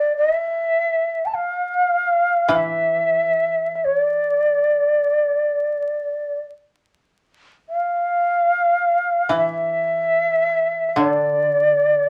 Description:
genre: japanese traditional, Japanese chamber music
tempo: free time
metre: none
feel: none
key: unclear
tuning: A4 = 441 Hz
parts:
  - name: shakuhachi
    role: melody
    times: 0.0-12.1 s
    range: D5 to A5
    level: -20 LUFS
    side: equal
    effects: none
  - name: koto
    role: accompaniment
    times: 2.5-12.1 s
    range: D3 to E3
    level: -26 LUFS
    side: equal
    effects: none
room: wet small room reverb, RT60 0.5 s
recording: vinyl crackle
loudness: -20 LUFS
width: mono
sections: 0.0-12.1 A section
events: none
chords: none

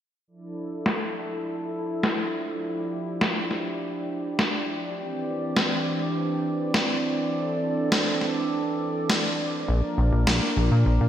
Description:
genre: synthwave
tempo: 102 BPM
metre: 4/4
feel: straight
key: D minor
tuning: A4 = 441 Hz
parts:
  - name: warm analog pad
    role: sustained chords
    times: 0.3-11.1 s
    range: E3 to D5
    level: -27 LUFS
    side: right 1 dB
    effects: chorus
  - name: electronic snare drum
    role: drums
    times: 0.9-10.4 s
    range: none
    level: -26 LUFS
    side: equal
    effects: gated reverb, gated reverb snare, low-pass filter on snare, studio reverb
  - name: chorused synth bass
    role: bass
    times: 9.7-11.1 s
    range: Bb1 to Bb2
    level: -20 LUFS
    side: equal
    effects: none
room: moderate lush hall reverb, RT60 2.4 s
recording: bright 1980s-style digital production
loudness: -23 LUFS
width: side -10 dB against mid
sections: 0.3-11.1 A section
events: filter sweep on drum 0.3-11.1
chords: 0.3 Dmadd9; 5.0 Cadd9; 9.7 Bb

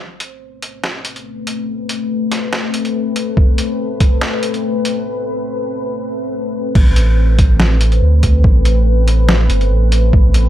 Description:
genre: deep dubstep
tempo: 142 BPM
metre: 4/4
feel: swing 53% on 16ths, half-time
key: A minor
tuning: A4 = 444 Hz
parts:
  - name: deep dark ambient pad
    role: sustained chords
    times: 1.2-10.5 s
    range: A3 to B4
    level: -20 LUFS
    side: left 3 dB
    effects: chorus, built-in reverb
  - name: trip hop sampler-style drum kit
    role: drums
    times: 0.2-10.4 s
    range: crash cymbal, hi-hat, snare drum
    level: -20 LUFS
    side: equal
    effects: overdrive, high-pass filter on hats, small room reverb, high-pass filter on snare, high-pass filter on cymbals
  - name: electronic kick drum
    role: drums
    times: 3.4-4.1, 6.8-10.2 s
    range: none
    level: -11 LUFS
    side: equal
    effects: overdrive, small room reverb
  - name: saturated sub bass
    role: bass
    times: 6.8-10.5 s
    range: G1 to D2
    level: -12 LUFS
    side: equal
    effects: none
room: little or no reverb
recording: dark, warm production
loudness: -12 LUFS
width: side -12 dB against mid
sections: 0.0-6.8 A section; 6.8-10.5 B section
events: build-up 0.0-6.8; break 5.1-6.8; drop 6.8-10.5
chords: 0.0 Amadd9

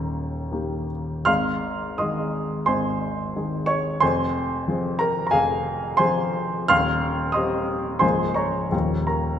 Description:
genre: classical, romantic character piece for solo piano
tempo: 76-94 BPM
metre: 4/4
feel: rubato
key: Ab major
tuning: A4 = 440 Hz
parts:
  - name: warm baby grand piano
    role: solo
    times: 0.0-9.4 s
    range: Db1 to F6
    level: -21 LUFS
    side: equal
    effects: none
room: moderate concert hall reverb, RT60 1.8 s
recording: none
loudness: -21 LUFS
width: side -9 dB against mid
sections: 0.0-9.4 A section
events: none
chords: 0.0 Eb; 1.3 Ab; 4.0 Fm; 6.7 Cm/Eb; 8.0 Bbm7/Db; 8.7 Eb9

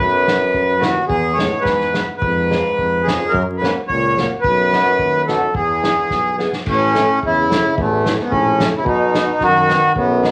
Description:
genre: alpine folk, alpine dance band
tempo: 109 BPM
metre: 2/4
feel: straight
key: E major, A major from 6.7 s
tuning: A4 = 436 Hz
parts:
  - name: accordion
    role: melody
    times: 0.0-10.3 s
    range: A3 to C#5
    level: -18 LUFS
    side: equal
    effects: none
  - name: warm euphonium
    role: second line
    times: 0.0-10.3 s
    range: D#2 to D#3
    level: -24 LUFS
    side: equal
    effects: none
  - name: mellow tuba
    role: bass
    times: 0.0-10.3 s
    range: A1 to F#2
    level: -27 LUFS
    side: equal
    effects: none
  - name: fingerpicked old ladder-braced acoustic guitar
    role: accompaniment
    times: 0.3-10.3 s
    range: F#3 to G#4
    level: -27 LUFS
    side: equal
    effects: none
  - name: unplugged drum kit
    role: drums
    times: 0.3-10.3 s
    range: crash cymbal, hi-hat, kick drum, snare drum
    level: -27 LUFS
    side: equal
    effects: none
room: moderate large studio reverb, RT60 0.9 s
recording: vinyl crackle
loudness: -17 LUFS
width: mono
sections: 0.0-6.7 A section; 6.7-10.3 B section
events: drum fill 6.1-6.7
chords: 0.0 Bsus4; 1.1 E; 2.2 C#7/E#; 3.3 F#; 4.4 B; 5.5 E; 6.7 A; 8.9 B

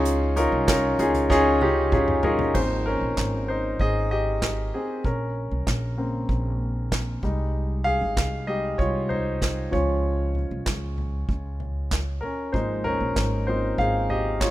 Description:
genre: piano-driven pop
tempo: 96 BPM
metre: 4/4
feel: straight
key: Ab major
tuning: A4 = 440 Hz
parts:
  - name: clear grand piano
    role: accompaniment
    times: 0.0-14.5 s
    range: Db3 to F5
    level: -24 LUFS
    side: equal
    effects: none
  - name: upright bass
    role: bass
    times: 0.0-14.5 s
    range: G1 to Db2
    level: -27 LUFS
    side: equal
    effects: none
  - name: unplugged drum kit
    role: drums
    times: 0.1-14.5 s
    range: crash cymbal, handclaps, hi-hat, kick drum, snare drum, toms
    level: -28 LUFS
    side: equal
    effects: none
room: little or no reverb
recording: rough home demo mix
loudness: -22 LUFS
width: side -15 dB against mid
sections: 0.0-2.6 A section; 2.6-14.5 B section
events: drum fill 1.3-2.6; grand piano solo 2.6-14.5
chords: 0.0 Dbadd9; 2.6 Ab6; 5.0 Bbmadd9; 7.2 Fm7; 9.7 Db; 12.5 Ab6

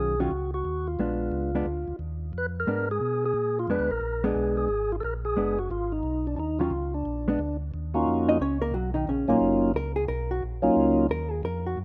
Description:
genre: soul jazz organ trio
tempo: 178 BPM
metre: 4/4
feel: swing 64% on 8ths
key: unclear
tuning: A4 = 440 Hz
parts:
  - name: percussive tonewheel organ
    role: melody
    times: 0.0-11.1 s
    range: Gb3 to Cb5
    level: -28 LUFS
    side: equal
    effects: slow rotary speaker
  - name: hollow-body jazz guitar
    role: accompaniment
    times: 0.0-11.8 s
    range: Bb2 to Eb5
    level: -30 LUFS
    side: equal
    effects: none
  - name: mellow tonewheel organ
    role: bass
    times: 0.0-11.8 s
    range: Gb1 to Cb3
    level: -34 LUFS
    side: equal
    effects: slow rotary speaker
room: light reverb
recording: rough home demo mix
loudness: -27 LUFS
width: mono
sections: 0.0-7.7 A section; 7.7-11.8 B section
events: hollow-body jazz guitar solo 7.7-11.8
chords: 0.0 Ebm9; 1.0 Bb7b9; 6.4 Ebm9; 7.1 Bb7b9; 7.7 Ebm9

